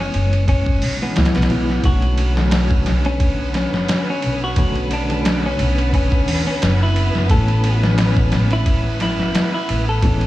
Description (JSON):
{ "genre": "trip hop", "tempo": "88 BPM", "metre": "4/4", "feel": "swing 55% on 16ths", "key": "B dorian", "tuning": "A4 = 440 Hz", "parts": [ { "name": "clean electric guitar", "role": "melody", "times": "0.0-10.3 s", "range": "B3 to A4", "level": "-24 LUFS", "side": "left 1 dB", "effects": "dub echo" }, { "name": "felt-muted upright piano", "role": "accompaniment", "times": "0.0-10.3 s", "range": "D3 to E4", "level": "-25 LUFS", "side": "left 1 dB", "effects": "tremolo, tape echo" }, { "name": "upright bass", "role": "bass", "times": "0.0-10.3 s", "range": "E1 to E2", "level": "-19 LUFS", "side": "equal", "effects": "none" }, { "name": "trip hop sampler-style drum kit", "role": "drums", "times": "0.1-10.3 s", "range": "hi-hat, kick drum, ride cymbal, snare drum", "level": "-20 LUFS", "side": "equal", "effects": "none" }, { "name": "rich studio violin section", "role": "sustained chords", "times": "1.8-10.3 s", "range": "B3 to B4", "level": "-29 LUFS", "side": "right 1 dB", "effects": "none" } ], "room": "small room reverb", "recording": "none", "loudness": "-15 LUFS", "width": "side -16 dB against mid", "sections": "0.0-1.8 A section; 1.8-10.3 B section", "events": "none", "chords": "0.0 F#7sus4; 1.8 Bm7; 7.3 Amaj7" }